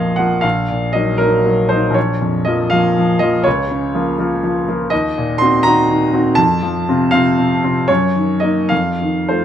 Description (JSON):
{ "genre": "classical, romantic character piece for solo piano", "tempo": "81 BPM (dotted quarters)", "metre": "6/8", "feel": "uneven beats, rubato", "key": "Bb minor", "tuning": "A4 = 440 Hz", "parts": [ { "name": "bright grand piano", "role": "solo", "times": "0.0-9.4 s", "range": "Bb1 to C6", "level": "-13 LUFS", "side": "equal", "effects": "none" } ], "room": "moderate recital hall reverb, RT60 1.7 s", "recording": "close, detailed microphones", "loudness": "-13 LUFS", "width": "side -10 dB against mid", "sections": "0.0-9.4 A section", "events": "none", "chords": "0.4 Ebm/Bb; 2.0 Bbm; 3.5 Bbm/Db; 4.9 Cm7b5/Eb; 6.4 F; 7.9 Ebm/Gb; 8.7 F7", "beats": "| 0.44 1.20 | 1.96 2.72 | 3.46 4.18 | 4.91 5.64 | 6.38 7.13 | 7.89 8.71" }